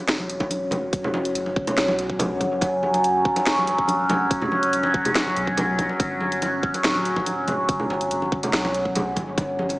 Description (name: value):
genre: deep dubstep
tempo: 142 BPM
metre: 4/4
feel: half-time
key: unclear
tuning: A4 = 440 Hz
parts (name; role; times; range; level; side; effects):
- overtone-sweeping drone; sustained chords; 0.0-9.8 s; F#3 to C#4; -22 LUFS; equal; chorus, built-in reverb, phaser
- soft dub sub bass; bass; 0.1-9.8 s; D1 to B1; -36 LUFS; equal; tube saturation
- garage drum kit; drums; 0.1-9.8 s; hi-hat, snare drum; -26 LUFS; equal; studio reverb
- congas; percussion; 0.2-9.8 s; none; -28 LUFS; equal; dub echo
- electronic kick drum; drums; 0.4-9.5 s; none; -26 LUFS; equal; studio reverb
room: wet plate reverb, RT60 2.1 s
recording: dreamy mix soaked in reverb, vinyl crackle, small speaker sound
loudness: -20 LUFS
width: side -20 dB against mid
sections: 0.0-9.8 A section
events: none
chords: 0.0 F#5; 6.0 G